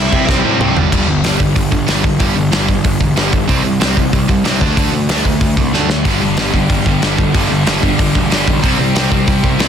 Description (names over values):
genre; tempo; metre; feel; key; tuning
punk rock; 187 BPM; 4/4; straight; unclear; A4 = 440 Hz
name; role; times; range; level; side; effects
distorted electric guitar; riff; 0.0-0.8, 6.0-9.7 s; G2 to C4; -19 LUFS; equal; overdrive
sludgy distorted guitar; riff; 0.0-9.7 s; G2 to D4; -19 LUFS; left 11 dB; overdrive
tight distorted guitar; riff; 0.0-9.7 s; G2 to D4; -19 LUFS; right 11 dB; distortion
fuzz picked electric bass; bass; 0.0-9.7 s; E1 to C3; -19 LUFS; equal; overdrive
big rock drum kit; drums; 0.1-9.7 s; crash cymbal, hi-hat, kick drum, snare drum, toms; -15 LUFS; equal; soft clipping on snare
room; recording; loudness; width
little or no reverb; dense, heavily limited modern master; -11 LUFS; side -8 dB against mid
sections
0.9-9.7 A section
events
drum fill 0.3-0.9, 5.7-6.1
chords
0.0 C; 0.8 G5; 3.5 C5; 4.6 D5; 6.1 G5; 8.6 C5